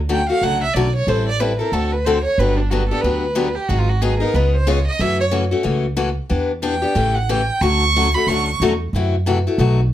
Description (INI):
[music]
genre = acoustic string swing (jazz manouche)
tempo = 183 BPM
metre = 4/4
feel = swing 60% on 8ths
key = D major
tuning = A4 = 440 Hz
[part]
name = upright bass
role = bass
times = 0.0-9.9 s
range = G1 to F#2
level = -20 LUFS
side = right 1 dB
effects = none
[part]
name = warm violin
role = melody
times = 0.1-8.6 s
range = D4 to C#6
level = -21 LUFS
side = right 3 dB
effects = none
[part]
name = picked steel-string acoustic guitar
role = accompaniment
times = 0.1-9.8 s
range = B2 to A4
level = -20 LUFS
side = left 4 dB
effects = none
[sound]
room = light reverb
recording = none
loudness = -16 LUFS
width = side -12 dB against mid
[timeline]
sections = 0.0-9.9 A section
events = violin solo 0.0-9.9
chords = 0.0 Dmaj7; 1.1 Am7; 1.7 D7; 2.4 Gmaj7; 3.7 G#m7; 4.3 C#7; 5.0 F#m7; 6.3 Em7; 7.0 A7; 7.6 Dmaj7; 8.9 F#m7b5